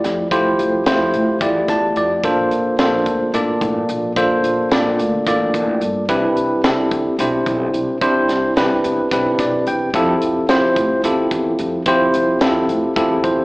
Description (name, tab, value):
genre	electric jazz fusion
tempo	218 BPM (eighths)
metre	7/8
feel	straight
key	F major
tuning	A4 = 441 Hz
part	bell-like tine electric piano	accompaniment	0.0-13.4 s	A3 to A5	-16 LUFS	equal	medium stereo tremolo
part	upright bass	bass	0.0-13.4 s	A1 to A2	-26 LUFS	equal	none
part	tight funk drum kit	drums	0.0-13.4 s	hi-hat, kick drum, snare drum	-21 LUFS	equal	none
room	light reverb, small room ambience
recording	live gig heard through the venue's PA, club reverb, AM radio sound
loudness	-15 LUFS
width	side -24 dB against mid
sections	0.0-13.4 A section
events	tine electric piano fill 1.4-2.2, 9.1-9.9, 13.0-13.4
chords	0.0 Fmaj9; 2.2 Bbmaj9; 6.1 Cmaj9; 9.9 Fmaj9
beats	0.04 | 0.32 0.59 0.87 1.14 1.42 1.69 1.97 | 2.24 2.52 2.79 3.07 3.34 3.62 3.89 | 4.17 4.44 4.72 4.99 5.27 5.54 5.82 | 6.09 6.37 6.64 6.92 7.19 7.46 7.74 | 8.02 8.29 8.56 8.84 9.11 9.39 9.66 | 9.94 10.21 10.49 10.76 11.04 11.31 11.59 | 11.86 12.14 12.41 12.69 12.96 13.24